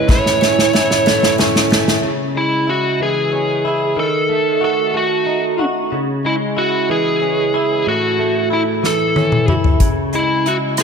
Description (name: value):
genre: six-eight pop ballad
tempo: 62 BPM (dotted quarters)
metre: 6/8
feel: straight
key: C# minor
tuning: A4 = 437 Hz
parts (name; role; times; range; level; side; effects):
- biting lead guitar; melody; 0.0-10.8 s; E4 to C#5; -17 LUFS; right 1 dB; overdrive, slapback echo
- direct-recorded clean electric guitar; accompaniment; 0.0-10.8 s; A2 to F#4; -19 LUFS; equal; double-tracked left and right, slapback echo
- picked steel-string acoustic guitar; arpeggios; 0.0-2.1 s; E3 to C#4; -23 LUFS; right 5 dB; slapback echo
- unplugged drum kit; drums; 0.1-2.0, 8.8-10.8 s; hi-hat, kick drum, rim click, snare drum, toms; -15 LUFS; left 1 dB; none
room: moderate lush hall reverb, RT60 2.6 s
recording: big arena sound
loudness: -14 LUFS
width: side -6 dB against mid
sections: 0.0-2.0 A section; 2.0-10.8 B section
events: drum fill 0.1-2.0, 8.8-9.8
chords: 0.1 A; 2.0 C#m; 4.0 D#dim; 5.9 C#m; 7.9 A; 9.8 C#m